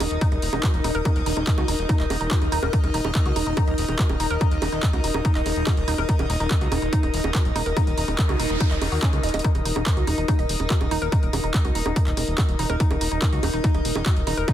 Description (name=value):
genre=psychedelic trance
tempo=143 BPM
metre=4/4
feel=straight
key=unclear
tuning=A4 = 440 Hz
part: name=evolving wavetable pad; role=sustained chords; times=0.0-14.5 s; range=Eb4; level=-32 LUFS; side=right 2 dB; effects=phaser, built-in reverb, sidechain pumping
part: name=woody wave-folded pluck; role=riff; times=0.0-14.5 s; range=Db4 to Eb5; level=-30 LUFS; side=moving between left 4 dB and right 3 dB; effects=chorus, auto-pan, sidechain pumping, ping-pong delay
part: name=fat analog bass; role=bass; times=0.0-14.4 s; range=Eb1 to Eb2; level=-26 LUFS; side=equal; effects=none
part: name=techno drum kit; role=drums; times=0.0-14.5 s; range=bongos, handclaps, hi-hat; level=-29 LUFS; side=right 3 dB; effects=overdrive
part: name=airy breathy pad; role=texture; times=0.0-14.5 s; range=Eb4 to Eb6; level=-30 LUFS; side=left 2 dB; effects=chorus, sidechain pumping
part: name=electronic kick drum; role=drums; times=0.2-14.5 s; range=none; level=-21 LUFS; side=equal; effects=overdrive
part: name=noise sweep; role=sound effects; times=8.0-9.4 s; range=none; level=-34 LUFS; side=equal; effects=none
room=little or no reverb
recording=dense, heavily limited modern master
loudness=-20 LUFS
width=side -11 dB against mid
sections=0.0-14.5 A section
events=filter sweep on synth arpeggio sound 0.0-14.5; noise sweep 8.0-9.4; drum fill 9.2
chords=0.0 Eb5